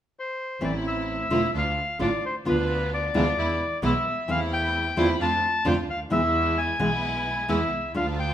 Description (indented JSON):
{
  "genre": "tango",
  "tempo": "131 BPM",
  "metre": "4/4",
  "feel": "rubato",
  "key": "unclear",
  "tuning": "A4 = 438 Hz",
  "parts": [
    { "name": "bandoneon", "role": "melody", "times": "0.2-8.3 s", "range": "B4 to B5", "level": "-26 LUFS", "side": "left 2 dB", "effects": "none" },
    { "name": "nylon-string guitar", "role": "accompaniment", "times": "0.6-8.0 s", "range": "B2 to F4", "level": "-27 LUFS", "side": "equal", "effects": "none" },
    { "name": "rich symphonic string section", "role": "stabs", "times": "0.6-8.3 s", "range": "G#3 to F4", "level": "-32 LUFS", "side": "right 3 dB", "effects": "none" },
    { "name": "clear double bass", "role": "bass", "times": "0.6-8.3 s", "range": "E1 to F2", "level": "-29 LUFS", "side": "right 1 dB", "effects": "none" }
  ],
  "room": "moderate large studio reverb, RT60 1.3 s",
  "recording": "minimal, uncompressed stereo recording",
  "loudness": "-22 LUFS",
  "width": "side -10 dB against mid",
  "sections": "0.6-8.3 A section",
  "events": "none",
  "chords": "0.0 N.C.; 0.6 Am; 1.5 Dm; 2.5 Bdim/D; 3.4 E; 4.3 Am/E; 5.2 Dm/F; 6.1 E",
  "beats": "0.16 | 0.62 1.08 1.54 2.00 | 2.46 2.91 3.37 3.83 | 4.29 4.74 5.20 5.66 | 6.11 6.57 7.03 7.49 | 7.95"
}